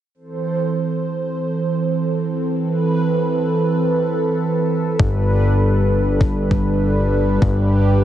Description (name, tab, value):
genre	synthwave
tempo	99 BPM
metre	4/4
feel	straight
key	A minor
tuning	A4 = 440 Hz
part	brassy analog pad	sustained chords	0.1-8.0 s	E3 to C5	-18 LUFS	right 2 dB	chorus, sidechain pumping
part	fat analog bass	bass	5.0-8.0 s	G1	-17 LUFS	left 1 dB	none
part	electronic kick drum	drums	5.0-7.5 s	none	-17 LUFS	left 1 dB	overdrive
room	light reverb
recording	nothing above 10.3 kHz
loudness	-16 LUFS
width	side -11 dB against mid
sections	0.1-8.0 A section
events	filter sweep on analog synth pad 0.1-8.0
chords	0.1 Am; 5.0 Gadd9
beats	| 0.15 0.75 1.36 1.97 | 2.57 3.18 3.78 4.39 | 5.00 5.60 6.21 6.81 | 7.42 8.03